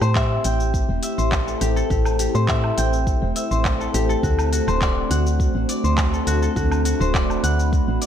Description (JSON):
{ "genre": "organic downtempo", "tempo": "103 BPM", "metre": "4/4", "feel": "straight", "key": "A dorian", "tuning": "A4 = 440 Hz", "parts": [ { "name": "warbly tape-like pad", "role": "sustained chords", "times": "0.0-8.1 s", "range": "A3 to B5", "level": "-26 LUFS", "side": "right 1 dB", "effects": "chorus, built-in reverb, sidechain pumping" }, { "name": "concert harp", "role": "arpeggios", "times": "0.0-8.1 s", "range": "F#4 to G5", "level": "-25 LUFS", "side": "left 4 dB", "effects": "ping-pong delay" }, { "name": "woody FM bass", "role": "bass", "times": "0.0-8.0 s", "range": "D1 to A2", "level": "-22 LUFS", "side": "equal", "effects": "none" }, { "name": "organic electronic drum kit", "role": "drums", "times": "0.0-8.1 s", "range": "handclaps, hi-hat, shaker, woodblock", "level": "-28 LUFS", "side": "equal", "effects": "none" }, { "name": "electronic kick drum", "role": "drums", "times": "0.2-7.8 s", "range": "none", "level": "-23 LUFS", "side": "equal", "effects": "none" } ], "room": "light reverb", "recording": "none", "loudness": "-18 LUFS", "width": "side -9 dB against mid", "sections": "0.0-8.1 A section", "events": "none", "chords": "0.0 Am7; 4.2 D7" }